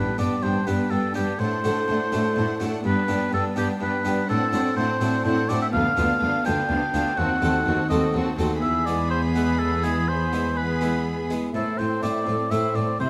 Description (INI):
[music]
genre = classical, baroque-style concerto movement with solo episodes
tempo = 124 BPM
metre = 3/4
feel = straight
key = G major, A minor from 5.7 s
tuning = A4 = 440 Hz
[part]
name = warm chamber violin section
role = melody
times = 0.0-13.1 s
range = A4 to B5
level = -39 LUFS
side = equal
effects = none
[part]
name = warm oboe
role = melody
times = 0.0-13.1 s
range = G4 to G5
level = -28 LUFS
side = equal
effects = none
[part]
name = rich symphonic violin section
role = second line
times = 0.0-13.1 s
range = C4 to G#4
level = -35 LUFS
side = equal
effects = none
[part]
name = harpsichord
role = accompaniment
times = 0.0-13.1 s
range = D2 to A4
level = -30 LUFS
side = equal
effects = none
[part]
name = rich chamber viola section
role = accompaniment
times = 0.0-13.1 s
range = A3 to C4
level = -31 LUFS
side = equal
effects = none
[part]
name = warm chamber cello section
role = bass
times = 0.0-13.1 s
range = D2 to C3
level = -30 LUFS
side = equal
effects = none
[sound]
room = moderate scoring stage reverb, RT60 1.6 s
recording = none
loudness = -23 LUFS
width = mono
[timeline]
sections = 0.0-11.5 A section; 11.5-13.1 A section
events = none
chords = 0.0 G; 1.4 D7/A; 2.8 G; 4.3 D7/A; 5.7 Bdim/D; 7.2 D#dim7; 8.6 E; 11.5 Am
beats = 0.43 0.91 | 1.40 1.88 2.37 | 2.85 3.33 3.81 | 4.29 4.77 5.25 | 5.73 6.21 6.70 | 7.18 7.66 8.14 | 8.63 9.11 9.60 | 10.08 10.57 11.06 | 11.55 12.03 12.52 | 13.00